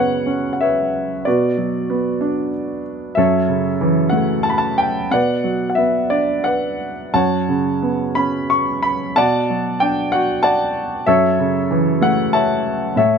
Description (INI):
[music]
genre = classical, lyrical solo piano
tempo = 87-97 BPM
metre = 3/4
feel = rubato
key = unclear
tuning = A4 = 439 Hz
[part]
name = warm grand piano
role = solo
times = 0.0-13.2 s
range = F#2 to C#6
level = -16 LUFS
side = equal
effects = none
[sound]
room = light reverb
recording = close, detailed microphones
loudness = -16 LUFS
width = side -6 dB against mid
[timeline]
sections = 0.0-13.2 A section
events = none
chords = 0.0 F#sus4; 1.3 Bm; 3.2 F#m7; 5.1 Bm; 7.1 F#sus4; 9.2 Bm; 11.1 F#m7